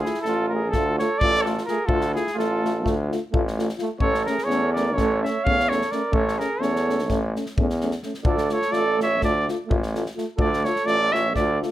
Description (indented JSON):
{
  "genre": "balkan folk, Balkan brass band",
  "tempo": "254 BPM (eighths)",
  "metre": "9/8",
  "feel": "straight",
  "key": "D hungarian minor",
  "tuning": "A4 = 440 Hz",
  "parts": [
    { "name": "dark trumpet", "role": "melody", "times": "0.0-11.6 s", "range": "G#4 to F5", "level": "-24 LUFS", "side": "right 1 dB", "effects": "none" },
    { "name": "mellow flugelhorn", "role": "second line", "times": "0.0-11.6 s", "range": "E4 to C#5", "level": "-28 LUFS", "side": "right 4 dB", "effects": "none" },
    { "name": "breathy euphonium", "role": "accompaniment", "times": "0.0-11.7 s", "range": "C#4 to F4", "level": "-30 LUFS", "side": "left 6 dB", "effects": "none" },
    { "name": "dark trombone", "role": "accompaniment", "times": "0.0-11.7 s", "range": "A3", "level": "-30 LUFS", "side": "right 4 dB", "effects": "none" },
    { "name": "clear tuba", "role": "bass", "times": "0.0-11.6 s", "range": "A1 to E2", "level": "-26 LUFS", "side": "equal", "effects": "none" },
    { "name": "natural country drum kit", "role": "percussion", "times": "0.1-11.7 s", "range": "kick drum, snare drum", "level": "-27 LUFS", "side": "left 1 dB", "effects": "none" }
  ],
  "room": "light reverb",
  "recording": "none",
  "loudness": "-20 LUFS",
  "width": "side -14 dB against mid",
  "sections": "0.0-11.7 A section",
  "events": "none",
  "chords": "0.0 Dm; 4.0 A; 8.3 Dm"
}